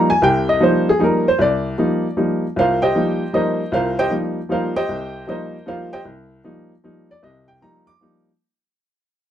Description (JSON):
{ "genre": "jazz", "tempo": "154 BPM", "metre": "3/4", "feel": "swing 66% on 8ths", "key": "unclear", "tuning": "A4 = 440 Hz", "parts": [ { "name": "warm upright piano", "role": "solo", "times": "0.0-8.3 s", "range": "C2 to D6", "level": "-16 LUFS", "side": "equal", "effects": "none" } ], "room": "light reverb", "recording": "none", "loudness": "-16 LUFS", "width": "side -10 dB against mid", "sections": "0.0-8.4 A section", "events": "fade-out 0.0-8.4", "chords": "0.0 F9sus4" }